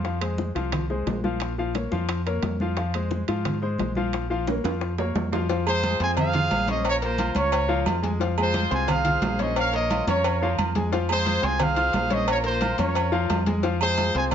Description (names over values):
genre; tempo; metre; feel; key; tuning
latin, salsa; 177 BPM; 4/4; straight; F minor; A4 = 440 Hz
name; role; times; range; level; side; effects
clear baby grand piano; accompaniment; 0.0-14.3 s; F3 to F6; -28 LUFS; left 4 dB; none
fingered electric bass; bass; 0.0-14.3 s; Bb1 to Ab2; -28 LUFS; right 1 dB; none
bongos and cowbell; percussion; 0.0-14.3 s; none; -33 LUFS; left 8 dB; none
congas; percussion; 0.0-14.3 s; none; -30 LUFS; right 1 dB; none
timbales and agogo bells; percussion; 0.0-14.3 s; none; -31 LUFS; right 6 dB; none
bright trumpet section; melody; 5.7-14.3 s; F4 to Ab5; -25 LUFS; right 1 dB; none
room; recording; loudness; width
moderate studio reverb, RT60 0.7 s; nothing above 7.6 kHz; -22 LUFS; side -8 dB against mid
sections
0.0-5.5 A section; 5.5-14.3 B section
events
drum fill 4.5-5.5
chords
0.0 Fm; 1.4 Bbm; 2.8 Fm; 4.1 Bbm; 5.5 Fm; 6.8 Bbm; 8.2 Fm; 9.6 Bbm; 10.9 Fm; 12.3 Bbm; 13.6 Fm